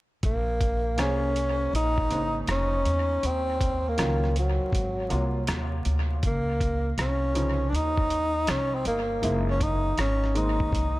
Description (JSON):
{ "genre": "hip hop, jazz-hop", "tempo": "80 BPM", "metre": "4/4", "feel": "swing 65% on 16ths", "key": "Bb minor", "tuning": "A4 = 440 Hz", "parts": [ { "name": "upright bass", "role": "bass", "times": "0.2-11.0 s", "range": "F1 to E2", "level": "-28 LUFS", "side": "equal", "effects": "none" }, { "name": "trip hop sampler-style drum kit", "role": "drums", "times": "0.2-11.0 s", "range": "hi-hat, kick drum, rim click", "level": "-31 LUFS", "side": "equal", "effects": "dub echo" }, { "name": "breathy tenor saxophone", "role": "melody", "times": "0.3-11.0 s", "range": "Gb3 to Eb4", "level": "-27 LUFS", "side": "equal", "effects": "dub echo" }, { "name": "warm upright piano", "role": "accompaniment", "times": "1.0-10.9 s", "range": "C3 to C5", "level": "-34 LUFS", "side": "equal", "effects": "dub echo" } ], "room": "light reverb, small room ambience", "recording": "echo-heavy mix, vinyl crackle", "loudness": "-23 LUFS", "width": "side -18 dB against mid", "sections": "0.2-11.0 A section", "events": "none", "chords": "0.2 Bbm9; 3.2 Ebm9; 4.7 Ab13; 6.2 Dbmaj7sus2; 9.2 Gb13", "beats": "| 0.23 0.98 1.73 2.48 | 3.23 3.98 4.73 5.48 | 6.23 6.98 7.73 8.48 | 9.23 9.98 10.73" }